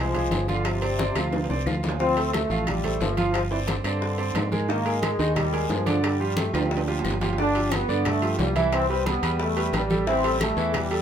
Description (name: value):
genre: latin, salsa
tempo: 178 BPM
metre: 4/4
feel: straight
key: unclear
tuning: A4 = 439 Hz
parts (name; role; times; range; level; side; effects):
- mellow trombone section; melody; 0.0-11.0 s; C3 to D4; -27 LUFS; left 2 dB; none
- clear concert grand piano; accompaniment; 0.0-11.0 s; D3 to F5; -27 LUFS; right 4 dB; none
- fingered electric bass; bass; 0.0-11.0 s; G1 to Ab2; -28 LUFS; equal; none
- bongos; percussion; 0.1-11.0 s; none; -34 LUFS; left 5 dB; none
- timbales; percussion; 0.1-11.0 s; none; -34 LUFS; right 5 dB; none
- congas; percussion; 0.2-11.0 s; none; -32 LUFS; left 2 dB; none
- guiro; percussion; 0.3-11.0 s; none; -39 LUFS; left 5 dB; none
- claves; percussion; 0.7-10.9 s; none; -38 LUFS; left 4 dB; none
room: moderate studio reverb, RT60 0.7 s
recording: minimal, uncompressed stereo recording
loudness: -22 LUFS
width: side -8 dB against mid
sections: 0.0-2.0 A section; 2.0-11.0 B section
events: drum fill 1.0-2.0, 6.5-7.4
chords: 0.0 Fmadd9; 0.7 G7sus4; 2.0 Dm7; 3.3 G7sus4; 4.7 Absus2; 6.0 G7(no3); 8.7 Cmaj7; 10.1 Am7